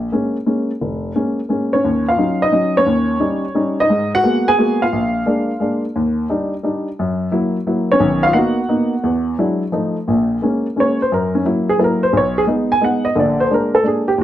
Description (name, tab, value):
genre	jazz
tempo	175 BPM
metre	3/4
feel	swing 65% on 8ths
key	Eb minor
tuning	A4 = 440 Hz
part	warm upright piano	solo	0.0-14.2 s	F1 to Ab5	-15 LUFS	equal	none
room	moderate large studio reverb, RT60 0.9 s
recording	none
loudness	-15 LUFS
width	side -12 dB against mid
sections	0.0-1.8 A section; 1.8-10.1 B section; 10.1-14.2 C section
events	upright piano solo 10.1-14.2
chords	0.0 Bbm7; 1.8 Ebm7; 2.9 Eb7; 3.9 Abm9; 4.9 Bb7; 6.0 Ebmaj7; 7.0 Gb7; 8.0 Bmaj7; 9.0 E9; 9.7 F7; 10.1 Bbm7; 11.1 Gb7; 12.1 B6; 13.2 Bb7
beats	0.12 0.46 | 0.81 1.15 1.49 | 1.84 2.18 2.52 | 2.87 3.21 3.55 | 3.90 4.24 4.58 | 4.92 5.27 5.61 | 5.95 6.29 6.64 | 6.98 7.32 7.67 | 8.01 8.35 8.70 | 9.04 9.38 9.72 | 10.07 10.41 10.75 | 11.10 11.44 11.78 | 12.12 12.47 12.81 | 13.15 13.49 13.84 | 14.18